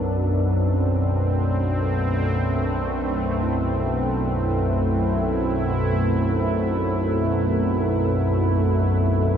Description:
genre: dark ambient drone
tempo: free time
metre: none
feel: none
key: unclear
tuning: A4 = 440 Hz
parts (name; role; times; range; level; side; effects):
- sweeping resonant pad; sustained chords; 0.0-9.4 s; B2 to B4; -24 LUFS; right 1 dB; chorus
- bronze singing bowl; arpeggios; 0.0-9.4 s; B2 to E4; -38 LUFS; right 2 dB; none
- organ-like drone; drone; 0.0-9.4 s; B1 to F#2; -22 LUFS; equal; ensemble chorus, built-in reverb
- wind-like tuned noise texture; texture; 0.0-9.4 s; A3 to A4; -37 LUFS; right 1 dB; built-in reverb
room: moderate huge ambient reverb, RT60 7.8 s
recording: none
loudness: -20 LUFS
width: side -8 dB against mid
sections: 0.0-9.4 A section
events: none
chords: 0.4 Amadd9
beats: free time

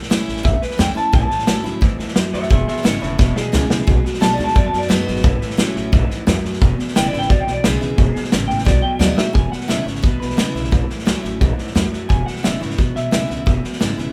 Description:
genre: rockabilly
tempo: 175 BPM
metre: 4/4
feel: straight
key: E major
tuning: A4 = 440 Hz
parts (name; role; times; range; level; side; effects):
- picked steel-string acoustic guitar; accompaniment; 0.0-14.1 s; E2 to F#4; -28 LUFS; equal; none
- vintage drum kit; drums; 0.0-14.0 s; hi-hat, kick drum, snare drum; -20 LUFS; equal; none
- upright bass; bass; 0.1-14.1 s; E1 to F#2; -26 LUFS; equal; none
- electric guitar through a small old amp; melody; 0.4-13.6 s; E4 to A5; -26 LUFS; equal; none
- electric guitar at the edge of break-up; riff; 1.1-14.1 s; E2 to G#3; -28 LUFS; equal; none
room: moderate studio reverb, RT60 0.7 s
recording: band playing live in one room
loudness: -18 LUFS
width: mono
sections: 0.0-9.3 A section; 9.3-14.1 B section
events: clean electric guitar solo 0.0-9.3; drum fill 3.2-3.9, 8.7-9.3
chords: 0.0 A; 2.5 E; 3.9 B; 5.2 A; 6.6 E; 8.7 B; 9.3 E; 10.7 A; 12.1 E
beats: 0.10 0.45 0.79 | 1.13 1.47 1.82 2.16 | 2.50 2.84 3.19 3.53 | 3.87 4.21 4.56 4.90 | 5.24 5.58 5.92 6.27 | 6.61 6.95 7.29 7.64 | 7.98 8.32 8.66 9.01 | 9.35 9.69 10.04 10.38 | 10.72 11.06 11.41 11.75 | 12.09 12.44 12.78 13.12 | 13.46 13.80

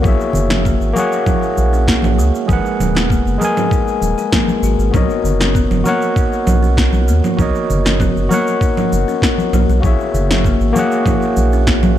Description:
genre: sunset chillout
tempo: 98 BPM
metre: 4/4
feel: straight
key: B major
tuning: A4 = 440 Hz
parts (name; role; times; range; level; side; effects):
- overdriven tine electric piano; accompaniment; 0.0-12.0 s; G#3 to G#5; -18 LUFS; moving between left 7 dB and right 7 dB; auto-pan, low-pass filter, ping-pong delay
- buzzing kalimba; arpeggios; 0.0-11.8 s; G#3 to G#4; -23 LUFS; left 4 dB; ping-pong delay
- round analog bass; bass; 0.0-12.0 s; D#1 to D#2; -16 LUFS; equal; none
- electronic cabasa, snare drum and congas; drums; 0.0-12.0 s; none; -20 LUFS; right 2 dB; overdrive
- electronic kick drum; drums; 0.0-11.8 s; none; -18 LUFS; equal; none
- congas; percussion; 0.0-12.0 s; none; -23 LUFS; left 2 dB; none
room: light reverb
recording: dark, warm production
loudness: -12 LUFS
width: side -12 dB against mid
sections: 0.0-12.0 A section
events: none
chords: 0.0 F#9; 2.5 G#m9; 4.9 Bmaj9; 9.8 F#9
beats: | 0.04 0.66 1.27 1.88 | 2.49 3.10 3.72 4.33 | 4.94 5.55 6.17 6.78 | 7.39 8.00 8.62 9.23 | 9.84 10.45 11.06 11.68

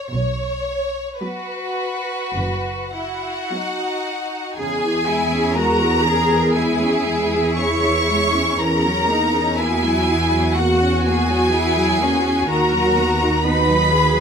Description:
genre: classical, slow romantic movement for string orchestra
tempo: 50-64 BPM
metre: 4/4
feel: rubato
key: B major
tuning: A4 = 440 Hz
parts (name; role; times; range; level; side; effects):
- warm studio violin section; melody; 0.0-14.2 s; B4 to C#6; -22 LUFS; left 2 dB; none
- clear studio cello section; bass; 0.1-14.2 s; F#2 to G#4; -24 LUFS; left 1 dB; none
- warm studio double bass section; bass; 0.1-14.2 s; F#1 to E2; -22 LUFS; right 1 dB; none
- clear studio violin section; second line; 1.2-14.2 s; D#4 to C#5; -24 LUFS; right 1 dB; none
- warm symphonic viola section; accompaniment; 1.2-14.2 s; C#3 to G#4; -22 LUFS; right 2 dB; none
room: light reverb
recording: close, detailed microphones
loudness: -16 LUFS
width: side -6 dB against mid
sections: 0.0-4.6 A section; 4.6-14.2 B section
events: none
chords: 0.1 B; 4.6 C#m/E; 8.6 F#7/E; 12.5 B/D#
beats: | 0.12 1.22 2.35 3.51 | 4.59 5.57 6.55 7.59 | 8.59 9.59 10.57 11.53 | 12.50 13.45

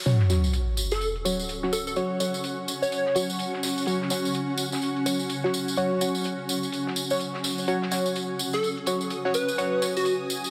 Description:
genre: bass house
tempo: 126 BPM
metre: 4/4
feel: swing 61% on 16ths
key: unclear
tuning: A4 = 440 Hz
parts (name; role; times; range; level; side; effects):
- band-passed chord stab; stabs; 0.1-9.9 s; F#3 to C#5; -31 LUFS; equal; chorus, phaser, digital delay
- warm soul drum kit; drums; 0.1-10.4 s; hi-hat, snare drum; -42 LUFS; equal; high-pass filter on hats, low-pass filter on hats, high-pass filter on snare, low-pass filter on snare, high-pass filter on room, low-pass filter on room
- tambourine; percussion; 0.1-10.5 s; none; -35 LUFS; equal; none
- sub drop; sound effects; 0.1-2.0 s; none; -28 LUFS; equal; none
- granular cloud pad; texture; 1.4-10.5 s; C#4 to D#6; -33 LUFS; equal; built-in reverb
- plucky unison lead; melody; 0.9-3.3, 8.5-10.1 s; F#4 to C#5; -31 LUFS; equal; analog chorus, digital delay
room: wet lush hall reverb, RT60 2.2 s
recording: heavily compressed radio sound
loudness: -27 LUFS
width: mono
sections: 0.1-10.5 A section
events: impact 0.1-2.0; filter sweep on synth stab 0.1-10.5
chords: 0.1 F#5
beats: | 0.06 0.54 1.01 1.49 | 1.96 2.44 2.92 3.39 | 3.87 4.34 4.82 5.30 | 5.77 6.25 6.73 7.20 | 7.68 8.15 8.63 9.11 | 9.58 10.06

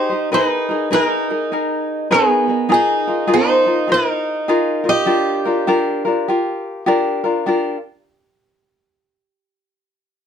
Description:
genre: Hawaiian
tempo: 101 BPM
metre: 4/4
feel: swing 64% on 8ths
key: unclear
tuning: A4 = 437 Hz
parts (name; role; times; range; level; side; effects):
- tenor ukulele; melody; 0.0-6.8 s; Ab4 to Eb5; -18 LUFS; equal; none
- picked swing-style acoustic guitar; second line; 0.0-6.8 s; Cb4 to G4; -22 LUFS; right 5 dB; none
- tenor ukulele; accompaniment; 0.0-7.8 s; D4 to C5; -18 LUFS; left 2 dB; none
room: light reverb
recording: close, detailed microphones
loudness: -15 LUFS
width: side -8 dB against mid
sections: 0.0-7.5 A section; 7.5-9.8 B section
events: none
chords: 0.3 Abmadd9; 2.7 Bb7sus4; 5.1 Dmadd11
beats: | 0.32 0.91 1.51 2.10 | 2.70 3.29 3.89 4.48 | 5.08 5.67 6.26 6.86 | 7.45

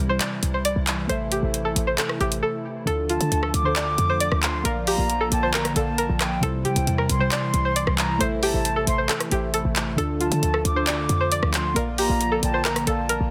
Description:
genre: hip hop, trap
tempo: 135 BPM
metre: 4/4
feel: half-time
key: D minor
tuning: A4 = 441 Hz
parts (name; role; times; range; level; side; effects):
- string-like resonator pluck; melody; 0.0-13.3 s; F4 to D5; -29 LUFS; equal; chorus, low-pass filter
- muted felt-like synth keys; accompaniment; 0.0-13.3 s; C3 to G5; -31 LUFS; equal; chorus, low-pass filter
- hollow soft pad; sustained chords; 0.0-13.3 s; C3 to F4; -34 LUFS; equal; ensemble chorus
- short 808-style bass; bass; 0.0-13.3 s; A1 to G3; -29 LUFS; equal; none
- trap drum kit; drums; 0.2-13.2 s; handclaps, hi-hat, rim click; -28 LUFS; equal; none
- concert flute; second line; 3.1-13.3 s; G5 to D6; -30 LUFS; equal; digital delay
room: little or no reverb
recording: dense, heavily limited modern master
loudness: -23 LUFS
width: mono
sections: 0.0-2.9 A section; 2.9-13.3 B section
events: break 2.4-2.9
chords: 0.0 C; 1.1 Am; 2.9 Dm; 4.7 Bb; 6.4 C; 8.2 Am; 10.0 Dm; 11.8 Bb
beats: 0.20 0.65 | 1.09 1.54 1.98 2.43 | 2.87 3.32 3.76 4.21 | 4.65 5.09 5.54 5.98 | 6.43 6.87 7.32 7.76 | 8.21 8.65 9.09 9.54 | 9.98 10.43 10.87 11.32 | 11.76 12.21 12.65 13.09

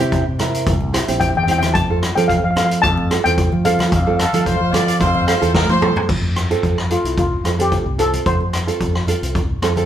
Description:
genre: calypso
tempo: 110 BPM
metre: 4/4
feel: swing 54% on 16ths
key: F major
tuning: A4 = 440 Hz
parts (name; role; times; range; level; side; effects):
- steel pan; melody; 0.0-8.8 s; E4 to A5; -20 LUFS; left 3 dB; none
- nylon-string guitar; accompaniment; 0.0-9.9 s; C4 to Bb4; -22 LUFS; right 4 dB; none
- fingered electric bass; bass; 0.0-9.9 s; Bb1 to F3; -20 LUFS; right 1 dB; none
- street-band drum kit; drums; 0.0-9.9 s; crash cymbal, hi-hat, kick drum, rim click, snare drum, toms; -20 LUFS; equal; none
- congas; percussion; 0.4-9.9 s; none; -30 LUFS; left 1 dB; none
- bright horn section; second line; 4.2-6.1 s; A4 to D5; -21 LUFS; left 1 dB; none
room: moderate stone room reverb, RT60 1.1 s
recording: band playing live in one room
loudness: -15 LUFS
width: side -10 dB against mid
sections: 0.0-6.1 A section; 6.1-9.9 B section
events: drum fill 5.4-6.1; steel pan solo 6.1-9.9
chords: 0.0 C7; 1.7 F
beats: 0.12 0.66 1.21 | 1.75 2.29 2.83 3.37 | 3.92 4.46 5.00 5.55 | 6.09 6.63 7.18 7.72 | 8.27 8.81 9.35

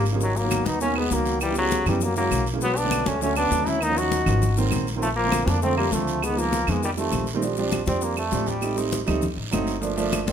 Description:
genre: Afro-Cuban jazz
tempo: 200 BPM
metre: 4/4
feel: straight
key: unclear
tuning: A4 = 440 Hz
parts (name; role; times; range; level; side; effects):
- brilliant trombone; melody; 0.0-10.3 s; F#3 to F#4; -25 LUFS; equal; none
- warm trombone; second line; 0.0-7.3 s; C#3 to D#4; -29 LUFS; left 4 dB; none
- warm grand piano; accompaniment; 0.0-10.3 s; B2 to Eb4; -27 LUFS; right 4 dB; none
- upright bass; bass; 0.0-10.3 s; G1 to F#2; -27 LUFS; left 1 dB; none
- congas; percussion; 0.0-10.3 s; none; -31 LUFS; left 4 dB; none
- guiro; percussion; 0.1-10.3 s; none; -37 LUFS; right 6 dB; none
- maracas; percussion; 0.1-10.3 s; none; -37 LUFS; left 7 dB; none
- claves; percussion; 0.5-10.3 s; none; -36 LUFS; right 8 dB; none
room: moderate large studio reverb, RT60 1.3 s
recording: minimal, uncompressed stereo recording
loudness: -21 LUFS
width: side -8 dB against mid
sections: 0.0-7.4 A section; 7.4-10.3 B section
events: trombone solo 7.4-10.3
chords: 0.2 G#m9; 1.4 C#m7b5; 2.0 F#7; 2.6 Bm7; 3.8 D#m7; 4.4 G#9; 5.0 A#maj9; 6.2 C#9; 6.8 F7; 7.4 Bb6; 8.6 Am7b5; 9.2 D7b9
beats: | 0.21 0.51 0.81 1.11 | 1.41 1.71 2.02 2.32 | 2.62 2.92 3.22 3.52 | 3.82 4.12 4.42 4.72 | 5.02 5.32 5.62 5.92 | 6.22 6.52 6.82 7.12 | 7.42 7.72 8.02 8.32 | 8.62 8.93 9.23 9.53 | 9.83 10.13

